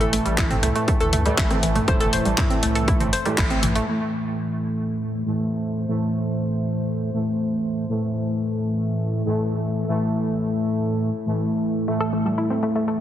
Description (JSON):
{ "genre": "melodic techno", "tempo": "120 BPM", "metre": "4/4", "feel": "straight", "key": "A minor", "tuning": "A4 = 440 Hz", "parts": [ { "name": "analog pluck", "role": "arpeggios", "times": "0.0-3.9, 11.9-13.0 s", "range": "E3 to C5", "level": "-25 LUFS", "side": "equal", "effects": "chorus, cassette tape, sidechain pumping, dub echo" }, { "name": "analog synth brass", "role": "stabs", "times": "0.0-13.0 s", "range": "A2 to A3", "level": "-23 LUFS", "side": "equal", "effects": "chorus, sidechain pumping, dub echo" }, { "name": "swelling detuned saw bass", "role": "bass", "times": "0.0-3.8 s", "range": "E1 to D2", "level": "-26 LUFS", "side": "equal", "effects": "tube saturation, sidechain pumping" }, { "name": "deep house drum kit", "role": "drums", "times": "0.0-3.9 s", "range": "handclaps, hi-hat, rim click, toms", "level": "-26 LUFS", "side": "equal", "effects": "overdrive" }, { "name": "electronic kick drum", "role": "drums", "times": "0.4-3.5 s", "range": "none", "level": "-22 LUFS", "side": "equal", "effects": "overdrive" }, { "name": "deep dark ambient pad", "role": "sustained chords", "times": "5.6-13.0 s", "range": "A3 to C5", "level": "-30 LUFS", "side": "equal", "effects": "chorus, built-in reverb, vintage 12-bit sampler grit, sidechain pumping" } ], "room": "moderate scoring stage reverb, RT60 1.9 s", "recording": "heavily compressed radio sound, multiband compression", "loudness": "-20 LUFS", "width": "side -11 dB against mid", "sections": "0.0-3.9 A section; 3.9-13.0 B section", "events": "band accent 3.4; filter sweep on ambient pad 3.9-13.0", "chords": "0.0 Am" }